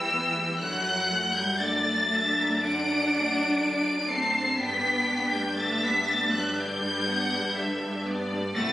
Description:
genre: classical, slow romantic movement for string orchestra.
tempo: 60 BPM.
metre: 4/4.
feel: rubato.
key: unclear.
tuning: A4 = 444 Hz.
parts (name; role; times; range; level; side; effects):
rich studio violin section; melody; 0.0-8.7 s; E6 to D7; -26 LUFS; left 1 dB; none.
bright symphonic violin section; second line; 0.0-8.7 s; D5 to A5; -33 LUFS; equal; none.
rich chamber viola section; accompaniment; 0.0-8.7 s; D3 to E4; -33 LUFS; equal; none.
clear chamber double bass section; bass; 0.0-8.7 s; C2 to G2; -35 LUFS; equal; none.
rich studio cello section; bass; 0.0-8.7 s; E3 to D4; -31 LUFS; equal; none.
room: wet recital hall reverb, RT60 1.4 s.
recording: recorded on a phone in the room, studio reverb, compression.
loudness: -24 LUFS.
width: side -14 dB against mid.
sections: 0.0-8.7 A section.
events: none.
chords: 0.0 Em; 0.6 D/F#; 4.6 G.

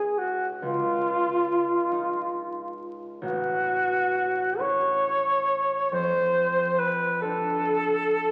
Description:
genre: classical, impressionist duo for alto saxophone and harp.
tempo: 46 BPM (dotted quarters).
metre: 6/8.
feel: rubato.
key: unclear.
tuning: A4 = 438 Hz.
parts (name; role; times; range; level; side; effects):
mellow alto saxophone; melody; 0.0-8.3 s; E#4 to C#5; -26 LUFS; equal; none.
concert harp; accompaniment; 0.0-8.3 s; A1 to G4; -37 LUFS; equal; none.
room: wet concert hall reverb, RT60 1.9 s.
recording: very old 78 rpm record, vinyl crackle.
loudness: -25 LUFS.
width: mono.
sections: 0.0-8.3 A section.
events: none.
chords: 0.0 C#madd9; 0.6 C#add9; 3.2 A6; 5.9 F69.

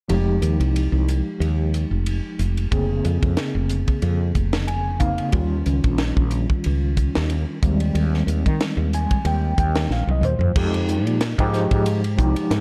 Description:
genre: electric jazz fusion.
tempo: 92 BPM.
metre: 4/4.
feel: swing 55% on 16ths.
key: F minor.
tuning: A4 = 441 Hz.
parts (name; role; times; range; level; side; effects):
overdriven tine electric piano; accompaniment; 0.1-12.6 s; Db3 to Ab5; -27 LUFS; equal; medium tremolo, analog chorus.
woody fretless electric bass; bass; 0.1-12.6 s; F1 to Eb3; -24 LUFS; equal; none.
crisp fusion drum kit; drums; 0.1-12.6 s; crash cymbal, hi-hat, kick drum, ride cymbal, snare drum, toms; -27 LUFS; equal; none.
room: light reverb, studio ambience.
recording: dark, warm production.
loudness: -21 LUFS.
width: mono.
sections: 0.1-10.6 A section; 10.6-12.6 B section.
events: tine electric piano fill 4.4-5.3, 8.6-10.6; drum fill 9.9-10.6.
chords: 0.1 Fm9; 2.7 Bbm9/F; 5.3 Eb9; 7.6 Abmaj7/Eb; 10.6 Fm9.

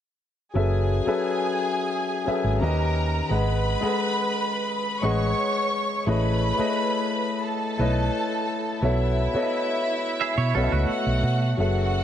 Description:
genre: soul.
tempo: 87 BPM.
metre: 4/4.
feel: straight.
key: unclear.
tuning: A4 = 440 Hz.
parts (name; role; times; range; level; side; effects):
warm studio string section; second line; 0.5-12.0 s; E4 to C#6; -28 LUFS; right 1 dB; none.
warm concert grand piano; accompaniment; 0.5-12.0 s; D#3 to F#5; -26 LUFS; left 3 dB; none.
hollow-body short-scale fingered electric bass; bass; 0.6-12.0 s; F#1 to B2; -24 LUFS; right 1 dB; none.
semi-hollow electric guitar; riff; 10.2-11.5 s; A3 to E5; -29 LUFS; right 9 dB; tremolo.
room: light reverb.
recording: dark, warm production, nothing above 10.9 kHz.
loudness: -22 LUFS.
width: side -10 dB against mid.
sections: 0.5-11.6 A section.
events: none.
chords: 0.5 F#m11; 2.6 D#7b13; 3.3 G#m7; 6.1 Amaj9#11; 8.8 B9sus4.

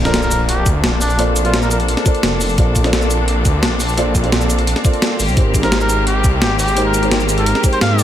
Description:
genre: liquid drum and bass.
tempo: 172 BPM.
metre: 4/4.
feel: straight.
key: Bb major.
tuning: A4 = 440 Hz.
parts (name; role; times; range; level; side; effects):
felt-muted upright piano; accompaniment; 0.0-8.0 s; Ab3 to D5; -21 LUFS; equal; dub echo.
clear symphonic string section; sustained chords; 0.0-8.0 s; Bb3 to A4; -23 LUFS; left 2 dB; none.
swelling detuned saw bass; bass; 0.0-8.0 s; F1 to Ab2; -18 LUFS; equal; none.
impact; sound effects; 0.0-1.2 s; none; -28 LUFS; equal; none.
trumpet with cup mute; melody; 0.1-1.8, 5.6-8.0 s; D4 to F5; -21 LUFS; equal; tape echo.
breakbeat sampler-style drum kit; drums; 0.1-8.0 s; hi-hat, shaker, snare drum; -20 LUFS; equal; small room ambience.
electronic kick drum; drums; 0.7-7.7 s; none; -15 LUFS; equal; small room ambience.
room: light reverb, digital ambience.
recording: none.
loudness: -13 LUFS.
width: side -11 dB against mid.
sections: 0.0-8.0 A section.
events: impact 0.0-1.2.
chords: 0.0 Bbmaj9; 5.2 Abmaj9.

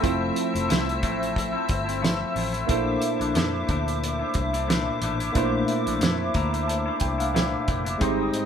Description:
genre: indie pop, bedroom pop.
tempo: 90 BPM.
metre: 4/4.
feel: swing 55% on 16ths.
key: unclear.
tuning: A4 = 445 Hz.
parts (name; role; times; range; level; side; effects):
tine electric piano; accompaniment; 0.0-8.5 s; Ab3 to Bb5; -28 LUFS; right 3 dB; medium stereo tremolo.
twangy electric guitar; accompaniment; 0.0-8.5 s; Ab2 to E4; -29 LUFS; left 6 dB; warbly pitch drift.
hollow soft pad; sustained chords; 0.0-8.5 s; C5 to E6; -30 LUFS; left 1 dB; ensemble chorus.
vintage muted fingered electric bass; bass; 0.0-8.3 s; F1 to F2; -30 LUFS; equal; none.
cloth-damped thuddy drum kit; drums; 0.0-8.5 s; hi-hat, kick drum, snare drum; -27 LUFS; right 1 dB; none.
room: moderate studio reverb, RT60 0.6 s.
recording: band playing live in one room.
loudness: -22 LUFS.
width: side -8 dB against mid.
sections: 0.0-8.5 A section.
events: tine electric piano fill 6.0-8.0.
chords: 0.0 Fmaj7; 2.7 Bbmaj9#11.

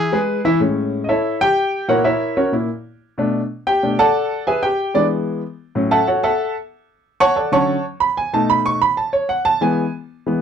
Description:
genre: latin.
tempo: 186 BPM.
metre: 4/4.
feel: straight.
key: A major.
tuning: A4 = 439 Hz.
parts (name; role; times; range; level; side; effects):
clear grand piano; accompaniment; 0.0-10.4 s; A2 to C#6; -16 LUFS; equal; none.
room: light reverb.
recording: close, detailed microphones.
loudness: -16 LUFS.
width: side -8 dB against mid.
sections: 0.6-10.4 A section.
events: grand piano solo 0.6-10.4.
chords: 0.0 E; 0.6 Amaj7; 1.9 F#7/A#; 3.2 Bm7; 4.5 E; 5.8 A6; 7.0 Dmaj7; 8.3 B7; 9.6 E.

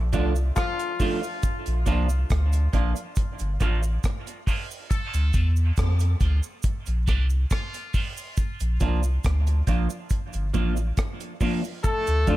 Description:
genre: dub reggae.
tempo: 69 BPM.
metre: 4/4.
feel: straight.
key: unclear.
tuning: A4 = 440 Hz.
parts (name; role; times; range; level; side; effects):
warm sub bass; bass; 0.0-12.4 s; G1 to F2; -22 LUFS; equal; none.
warm horn section; second line; 0.1-12.4 s; D3 to A4; -32 LUFS; left 2 dB; high-pass filter, dub echo.
semi-hollow electric guitar; accompaniment; 0.1-12.4 s; F3 to F4; -31 LUFS; right 3 dB; phaser, high-pass filter, dub echo.
deep reggae drum kit; drums; 0.1-12.4 s; hi-hat, kick drum, rim click; -26 LUFS; equal; none.
cabasa; percussion; 0.1-12.4 s; none; -44 LUFS; right 9 dB; high-pass filter on perc.
dark upright piano; stabs; 12.3-12.4 s; D4 to D5; -36 LUFS; left 5 dB; none.
room: small room ambience.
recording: none.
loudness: -22 LUFS.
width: side -16 dB against mid.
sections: 0.0-12.4 A section.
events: break 0.0-11.8; filter sweep 1.4-8.4.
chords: 0.0 Dm; 1.4 Bb; 4.9 Dm; 8.4 Bb; 11.8 Dm.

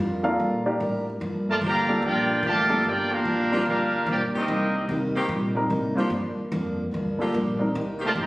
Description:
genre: jazz, big band swing.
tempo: 147 BPM.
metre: 4/4.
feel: swing 64% on 8ths.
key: G minor.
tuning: A4 = 440 Hz.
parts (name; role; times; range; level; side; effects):
picked steel-string acoustic guitar; accompaniment; 0.0-8.3 s; G2 to Bb4; -29 LUFS; equal; none.
upright bass; bass; 0.0-8.3 s; G1 to Bb2; -32 LUFS; equal; none.
dark baby grand piano; accompaniment; 0.2-7.7 s; G3 to F5; -26 LUFS; equal; none.
clear trumpet section; melody; 1.5-4.9, 8.1-8.3 s; Bb3 to Bb5; -24 LUFS; right 1 dB; none.
clear trombone section; second line; 1.5-4.8, 8.0-8.3 s; D3 to G4; -29 LUFS; equal; none.
clear saxophone section; sustained chords; 1.6-8.3 s; Eb3 to G4; -32 LUFS; left 1 dB; none.
room: wet scoring stage reverb, RT60 1.5 s.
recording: recorded on a phone in the room, studio reverb.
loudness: -22 LUFS.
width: side -19 dB against mid.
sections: 0.0-1.2 A section; 1.2-8.3 B section.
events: grand piano solo 0.0-1.2.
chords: 0.0 Gm7; 4.5 Cm7; 6.1 Gm7; 7.7 Cm7.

